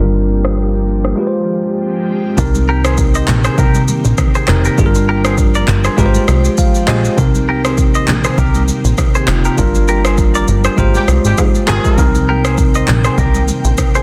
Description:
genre	afrobeats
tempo	100 BPM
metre	4/4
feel	swing 55% on 16ths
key	C minor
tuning	A4 = 440 Hz
part	bell-like tine electric piano	accompaniment	0.0-14.0 s	C3 to F5	-19 LUFS	equal	none
part	ethereal airy pad	sustained chords	0.0-14.0 s	Ab2 to G5	-27 LUFS	equal	ensemble chorus, built-in reverb
part	plucky analog bass	bass	0.0-13.7 s	F1 to Ab2	-17 LUFS	equal	none
part	afro-pop drum kit	drums	0.1-14.0 s	handclaps, kick drum, rim click, shaker	-18 LUFS	equal	overdrive
part	congas	percussion	2.5-13.9 s	none	-27 LUFS	equal	none
part	direct-recorded clean electric guitar	riff	2.7-14.0 s	F4 to Eb5	-24 LUFS	equal	lush chorus, delay
part	mellow horn section	second line	10.9-12.1 s	C3 to Ab4	-24 LUFS	equal	none
room	little or no reverb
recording	dense, heavily limited modern master, low-pass filter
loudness	-13 LUFS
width	mono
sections	0.0-2.4 A section; 2.4-14.0 B section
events	filter sweep 0.0-2.4; tine electric piano fill 6.3-7.2; band accent 9.6-12.0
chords	0.0 Gm7; 1.2 Fmadd9/Ab; 2.4 Cm7; 4.8 Gm7; 6.0 Fmadd9/Ab; 7.2 Cm7; 9.6 Gm7; 10.8 Fmadd9/Ab; 12.0 Cm7

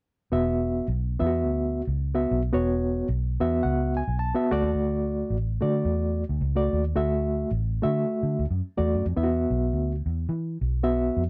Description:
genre	uptempo 1960s-style soul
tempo	108 BPM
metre	4/4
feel	swing 59% on 8ths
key	unclear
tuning	A4 = 439 Hz
part	reed electric piano	accompaniment	0.3-11.2 s	A3 to A5	-28 LUFS	equal	fast tremolo
part	vintage muted fingered electric bass	bass	0.3-11.3 s	E1 to E3	-29 LUFS	equal	none
room	light reverb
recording	none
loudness	-26 LUFS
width	mono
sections	0.3-9.2 A section; 9.2-11.3 B section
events	reed electric piano fill 3.1-4.7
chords	0.3 Esus2; 4.5 D; 9.2 Esus2

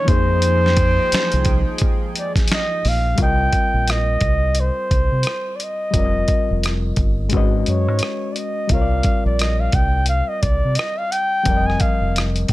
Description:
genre	R&B, neo-soul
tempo	87 BPM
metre	4/4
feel	swing 59% on 16ths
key	unclear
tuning	A4 = 438 Hz
part	breathy flugelhorn	melody	0.0-12.5 s	C5 to Ab5	-22 LUFS	equal	slapback echo
part	overdriven reed electric piano	accompaniment	0.0-12.5 s	F3 to Eb5	-26 LUFS	left 5 dB	none
part	chorused pulse-width pad	sustained chords	0.0-3.2 s	F3 to G5	-28 LUFS	right 3 dB	none
part	deep dub fingered electric bass	bass	0.1-12.5 s	F1 to C3	-19 LUFS	equal	none
part	dusty soul sampler-style drum kit	drums	0.1-12.5 s	finger snaps, hi-hat, kick drum, rim click, snare drum	-20 LUFS	equal	none
room	little or no reverb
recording	none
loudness	-16 LUFS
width	side -17 dB against mid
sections	0.0-3.2 A section; 3.2-12.5 B section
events	none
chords	0.1 Fm9; 3.2 Cm7; 5.9 F9sus4; 7.3 Abm7; 8.7 C9sus4; 11.5 F9sus4

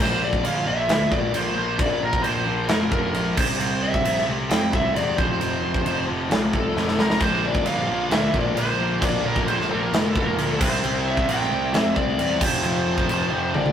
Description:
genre	hard rock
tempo	133 BPM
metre	4/4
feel	straight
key	unclear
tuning	A4 = 442 Hz
part	high-gain lead guitar	melody	0.0-13.7 s	A4 to G5	-25 LUFS	equal	distortion
part	crunchy overdriven guitar	riff	0.0-13.7 s	F2 to C4	-31 LUFS	right 4 dB	none
part	overdriven electric guitar	riff	0.0-13.7 s	F2 to C4	-28 LUFS	left 4 dB	none
part	fuzz picked electric bass	bass	0.0-13.7 s	F1 to F2	-29 LUFS	equal	overdrive
part	big rock drum kit	drums	0.3-13.7 s	crash cymbal, kick drum, snare drum, toms	-24 LUFS	equal	none
part	biting overdriven guitar	riff	7.2-13.7 s	Bb2 to F4	-29 LUFS	equal	spring reverb
room	moderate studio reverb, RT60 0.6 s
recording	rough rehearsal-room recording, tube saturation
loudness	-19 LUFS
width	side -9 dB against mid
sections	0.0-13.7 A section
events	drum fill 6.8-7.2, 13.5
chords	0.0 Bb; 3.4 C; 5.2 F; 7.2 Bb; 10.6 C; 12.4 F

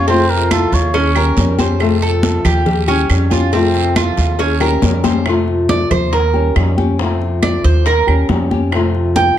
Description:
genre	latin, Cuban son and guajira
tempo	139 BPM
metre	4/4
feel	straight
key	F major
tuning	A4 = 441 Hz
part	trumpet with cup mute	melody	0.0-1.6 s	A4 to Db5	-18 LUFS	right 1 dB	none
part	nylon-string guitar	accompaniment	0.0-9.4 s	C3 to G4	-18 LUFS	left 3 dB	none
part	Cuban tres	arpeggios	0.0-9.4 s	C4 to G5	-18 LUFS	right 4 dB	none
part	upright bass	bass	0.0-9.3 s	Eb2 to F2	-16 LUFS	equal	none
part	congas	percussion	0.1-9.4 s	none	-21 LUFS	left 1 dB	none
part	cowbell and bongos	percussion	0.1-9.4 s	none	-24 LUFS	left 7 dB	none
part	guiro	percussion	0.1-5.3 s	none	-29 LUFS	right 8 dB	none
part	claves	percussion	0.5-8.9 s	none	-25 LUFS	right 8 dB	none
room	moderate large studio reverb, RT60 0.8 s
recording	dark, warm production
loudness	-12 LUFS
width	side -11 dB against mid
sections	0.0-5.3 A section; 5.3-9.4 B section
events	drum fill 4.6-5.3; Cuban tres solo 5.3-9.4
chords	0.1 F; 0.9 Eb7; 1.8 F; 2.7 Eb7; 3.5 F; 4.4 Eb7; 5.3 F; 6.1 Eb7; 7.0 F; 7.9 Eb7; 8.7 F

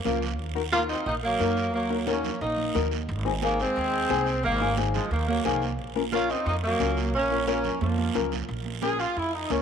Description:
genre	latin, cumbia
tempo	178 BPM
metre	4/4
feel	straight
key	Bb minor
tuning	A4 = 440 Hz
part	flamenco guitar	accompaniment	0.0-9.6 s	C4 to Bb4	-31 LUFS	left 11 dB	none
part	mellow saxophone section	melody	0.1-9.6 s	Eb3 to Ab4	-27 LUFS	right 1 dB	none
part	upright bass	bass	0.1-9.6 s	Ab1 to Gb2	-31 LUFS	right 1 dB	none
part	congas	percussion	0.1-9.6 s	none	-35 LUFS	right 12 dB	none
part	guiro	percussion	0.1-9.6 s	none	-38 LUFS	right 12 dB	none
room	moderate plate reverb, RT60 2.6 s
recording	1960s-style stereo with parts hard left and right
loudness	-24 LUFS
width	side -7 dB against mid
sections	0.0-8.5 A section; 8.5-9.6 B section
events	drum fill 7.8-8.5; saxophone section solo 8.5-9.6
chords	0.4 Ebm; 3.1 Ab; 5.8 Bbm

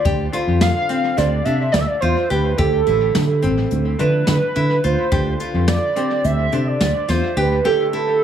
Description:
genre	progressive instrumental, band music in an uneven meter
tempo	213 BPM (eighths)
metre	9/8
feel	straight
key	unclear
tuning	A4 = 440 Hz
part	hollow square lead	melody	0.0-8.2 s	A4 to F5	-20 LUFS	right 3 dB	chorus, phaser, dub echo
part	jazz brush drum kit	drums	0.0-7.5 s	hi-hat, kick drum, snare drum	-24 LUFS	equal	dub echo
part	nylon-string guitar	arpeggios	0.1-8.2 s	C4 to G4	-24 LUFS	left 3 dB	dub echo
part	fingered electric bass	bass	0.1-7.6 s	A1 to D3	-19 LUFS	right 1 dB	none
part	hollow-body jazz guitar	accompaniment	0.3-8.2 s	D3 to C5	-29 LUFS	equal	dub echo
room	light reverb, small room ambience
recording	echo-heavy mix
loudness	-16 LUFS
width	side -9 dB against mid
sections	0.0-8.2 A section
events	none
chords	0.1 Dm7; 1.2 Gsus4/D; 2.6 C6; 3.7 Fmaj7/D; 5.1 Dm7; 6.2 Gsus4/D; 7.7 C6/D (rootless)

